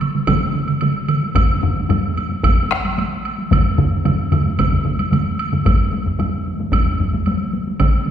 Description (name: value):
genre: japanese traditional, taiko drum ensemble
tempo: 112 BPM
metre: 4/4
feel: straight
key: none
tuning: none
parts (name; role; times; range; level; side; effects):
- solo taiko drums; percussion; 0.0-8.1 s; none; -21 LUFS; right 3 dB; none
- taiko ensemble; percussion; 0.0-8.1 s; none; -23 LUFS; left 1 dB; none
- woodblock; percussion; 0.0-7.9 s; none; -25 LUFS; right 3 dB; none
- taiko ensemble; percussion; 0.3-7.9 s; none; -21 LUFS; equal; none
- taiko ensemble; percussion; 1.4-7.3 s; none; -20 LUFS; left 2 dB; none
room: wet scoring stage reverb, RT60 1.9 s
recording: recorded in a church or concert hall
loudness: -16 LUFS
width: side -9 dB against mid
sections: 0.0-5.7 A section; 5.7-8.1 B section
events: none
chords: none